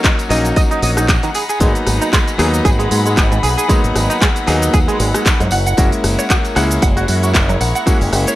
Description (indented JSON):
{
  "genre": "nu-disco, nu disco",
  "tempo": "115 BPM",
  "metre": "4/4",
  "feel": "swing 56% on 16ths",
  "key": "unclear",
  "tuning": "A4 = 440 Hz",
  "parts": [
    { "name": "bright electric grand piano", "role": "accompaniment", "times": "0.0-8.4 s", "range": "F#3 to E4", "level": "-20 LUFS", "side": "left 1 dB", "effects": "slapback echo" },
    { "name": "warm studio string section", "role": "sustained chords", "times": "0.0-8.4 s", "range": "D#4 to B5", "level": "-23 LUFS", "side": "left 2 dB", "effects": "sidechain pumping" },
    { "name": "direct-recorded clean electric guitar", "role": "riff", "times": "0.0-8.3 s", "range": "G#2 to F#5", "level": "-20 LUFS", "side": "right 2 dB", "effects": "ensemble chorus" },
    { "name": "electronic kick drum", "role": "drums", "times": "0.0-8.0 s", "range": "none", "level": "-15 LUFS", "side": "equal", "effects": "small room ambience" },
    { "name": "house drum kit", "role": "drums", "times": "0.0-8.4 s", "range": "handclaps, hi-hat, rim click, shaker", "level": "-20 LUFS", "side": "equal", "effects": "small room ambience" },
    { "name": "tambourine", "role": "percussion", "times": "0.0-8.4 s", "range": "none", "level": "-29 LUFS", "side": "right 1 dB", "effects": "none" },
    { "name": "fingered electric bass with an envelope filter", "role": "bass", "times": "0.3-8.2 s", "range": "F#1 to G#2", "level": "-17 LUFS", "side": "equal", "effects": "tube saturation" }
  ],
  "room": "light reverb",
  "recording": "none",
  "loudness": "-12 LUFS",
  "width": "side -15 dB against mid",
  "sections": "0.0-8.4 A section",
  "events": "none",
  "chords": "0.0 D#m7; 1.3 G#m7; 5.5 F#7",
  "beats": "0.04 0.56 1.08 | 1.61 2.13 2.65 3.17 | 3.69 4.21 4.74 5.26 | 5.78 6.30 6.82 7.35 | 7.87"
}